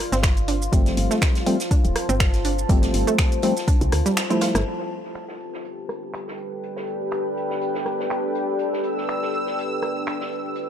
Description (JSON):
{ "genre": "deep house", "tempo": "122 BPM", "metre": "4/4", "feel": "swing 55% on 16ths", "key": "A minor", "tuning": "A4 = 440 Hz", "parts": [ { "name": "deep dark ambient pad", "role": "texture", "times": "0.0-10.7 s", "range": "F4 to A5", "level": "-28 LUFS", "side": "left 2 dB", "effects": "chorus, built-in reverb, sidechain pumping" }, { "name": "analog pluck", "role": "arpeggios", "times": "0.1-4.6 s", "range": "G3 to F4", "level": "-27 LUFS", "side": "right 3 dB", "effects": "chorus, sidechain pumping, analog delay" }, { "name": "woody FM bass", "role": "bass", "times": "0.1-4.6 s", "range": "D1 to D2", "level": "-24 LUFS", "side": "equal", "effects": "tube saturation, sidechain pumping" }, { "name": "deep house drum kit", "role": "drums", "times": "0.1-10.7 s", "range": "finger snaps, hi-hat, rim click, shaker", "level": "-28 LUFS", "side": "right 1 dB", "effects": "overdrive, low-pass filter on hats, low-pass filter on snare, low-pass filter on perc, low-pass filter on room" }, { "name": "unplugged drum kit", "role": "drums", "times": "0.1-10.7 s", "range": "hi-hat, snare drum", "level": "-36 LUFS", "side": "right 1 dB", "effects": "sidechain pumping on hats, high-pass filter on hats, low-pass filter on hats, high-pass filter on snare, low-pass filter on snare, high-pass filter on room, low-pass filter on room" }, { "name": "electronic kick drum", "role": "drums", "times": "0.2-3.8 s", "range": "none", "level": "-20 LUFS", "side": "equal", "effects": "overdrive" }, { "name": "percussive organ stab", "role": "stabs", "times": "0.7-4.6 s", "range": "F3 to E4", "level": "-25 LUFS", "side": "left 1 dB", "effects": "chorus, analog delay" }, { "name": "deep dark ambient pad", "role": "sustained chords", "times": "6.0-10.7 s", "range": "D4 to G5", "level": "-28 LUFS", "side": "equal", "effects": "chorus, built-in reverb, sidechain pumping" }, { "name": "analog string pad", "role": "texture", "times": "8.6-10.7 s", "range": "E6", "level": "-30 LUFS", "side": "right 2 dB", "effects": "ensemble chorus, sidechain pumping" } ], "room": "little or no reverb", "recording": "transformer saturation", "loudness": "-20 LUFS", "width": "side -9 dB against mid", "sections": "0.0-4.7 A section; 4.7-10.7 B section", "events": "kick drops out 4.2-4.7; band accent 4.2", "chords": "0.0 G9sus4; 4.7 A9sus4" }